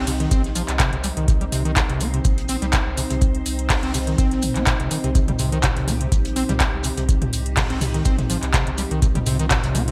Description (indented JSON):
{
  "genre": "acid house",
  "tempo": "124 BPM",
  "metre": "4/4",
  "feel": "swing 54% on 16ths",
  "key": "C minor",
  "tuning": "A4 = 442 Hz",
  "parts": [
    { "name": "string machine, full ensemble", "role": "sustained chords", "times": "0.0-9.9 s", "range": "C4 to C5", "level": "-32 LUFS", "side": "equal", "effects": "ensemble chorus, sidechain pumping" },
    { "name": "overdriven acid bass", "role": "riff", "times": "0.0-9.9 s", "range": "Bb2 to C4", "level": "-28 LUFS", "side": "equal", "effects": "distortion, tube saturation, ensemble chorus, digital delay" },
    { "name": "warm sub bass", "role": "bass", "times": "0.0-9.9 s", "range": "Bb1 to C2", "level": "-29 LUFS", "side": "equal", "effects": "sidechain pumping" },
    { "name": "electro analog drum machine", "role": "drums", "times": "0.1-9.9 s", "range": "handclaps, hi-hat, toms", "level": "-27 LUFS", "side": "equal", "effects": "gated reverb" },
    { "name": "warm soul drum kit", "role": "drums", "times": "0.1-9.9 s", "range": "hi-hat, shaker, snare drum", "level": "-36 LUFS", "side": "equal", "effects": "sidechain pumping on hats, high-pass filter on hats, high-pass filter on snare, sidechain pumping on perc, high-pass filter on perc, high-pass filter on room, gated reverb" },
    { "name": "electronic kick drum", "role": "drums", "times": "0.3-9.6 s", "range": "none", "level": "-23 LUFS", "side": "equal", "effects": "none" }
  ],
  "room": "moderate plate reverb, RT60 1.6 s, small room ambience",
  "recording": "bright 1980s-style digital production",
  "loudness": "-21 LUFS",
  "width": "mono",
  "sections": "0.0-9.9 A section",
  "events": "none",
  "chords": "0.0 Cm",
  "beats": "0.31 0.80 | 1.28 1.76 2.25 2.73 | 3.22 3.70 4.18 4.67 | 5.15 5.63 6.12 6.60 | 7.09 7.57 8.05 8.54 | 9.02 9.51"
}